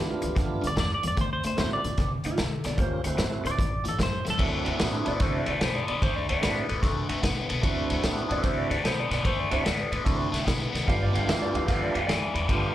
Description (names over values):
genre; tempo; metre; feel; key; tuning
electric blues shuffle; 148 BPM; 4/4; swing 66% on 8ths; D mixolydian; A4 = 440 Hz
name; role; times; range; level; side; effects
electric slide guitar; second line; 0.0-12.5 s; F4 to F5; -34 LUFS; equal; slapback echo
tonewheel organ; accompaniment; 0.0-12.7 s; A3 to G4; -32 LUFS; right 5 dB; slow rotary speaker, overdrive, slapback echo
crunchy overdriven guitar; riff; 0.0-12.7 s; G2 to B3; -30 LUFS; left 4 dB; phaser, slapback echo
upright bass; bass; 0.0-12.7 s; G1 to C3; -32 LUFS; equal; none
vintage drum kit; drums; 0.2-12.6 s; crash cymbal, hi-hat, kick drum, ride cymbal, snare drum; -28 LUFS; equal; none
clean electric guitar; melody; 0.7-4.4 s; A4 to D5; -30 LUFS; right 1 dB; analog chorus, slapback echo
room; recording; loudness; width
little or no reverb; live gig heard through the venue's PA, club reverb; -24 LUFS; side -13 dB against mid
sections
0.0-4.4 A section; 4.4-12.7 B section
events
electric slide guitar solo 4.4-12.7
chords
0.0 G9; 1.2 D9; 3.6 A7; 4.4 D9; 10.9 G9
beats
0.36 0.77 | 1.17 1.57 1.98 2.38 | 2.79 3.19 3.59 4.00 | 4.40 4.80 5.21 5.61 | 6.02 6.42 6.83 7.23 | 7.63 8.04 8.44 8.85 | 9.25 9.66 10.06 10.47 | 10.87 11.28 11.68 12.08 | 12.49